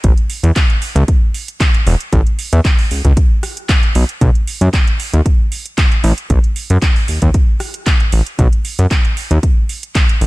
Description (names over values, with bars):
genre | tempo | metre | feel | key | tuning
nu-disco, nu disco | 115 BPM | 4/4 | swing 53% on 16ths | unclear | A4 = 440 Hz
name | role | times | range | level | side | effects
fat analog bass | bass | 0.0-10.3 s | E1 to F#2 | -11 LUFS | equal | none
electronic kick drum | drums | 0.0-10.1 s | none | -12 LUFS | equal | studio reverb
house drum kit | drums | 0.0-10.3 s | handclaps, hi-hat, rim click | -21 LUFS | right 1 dB | studio reverb
room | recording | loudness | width
digital ambience | lossy compression artefacts | -12 LUFS | side -20 dB against mid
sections
0.0-10.3 A section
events
none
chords
none